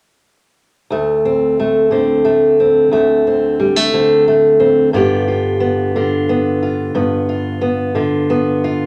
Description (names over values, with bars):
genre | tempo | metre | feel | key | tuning
blues | 60 BPM (dotted quarters) | 12/8 | straight | unclear | A4 = 439 Hz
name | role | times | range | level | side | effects
fingerpicked steel-string acoustic guitar | solo | 0.9-8.9 s | D2 to G4 | -14 LUFS | equal | none
room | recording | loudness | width
moderate large studio reverb, RT60 0.8 s | none | -15 LUFS | mono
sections
0.9-8.9 A section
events
none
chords
0.9 D5; 4.9 G7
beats
| 0.90 1.91 2.92 3.93 | 4.93 5.94 6.95 7.96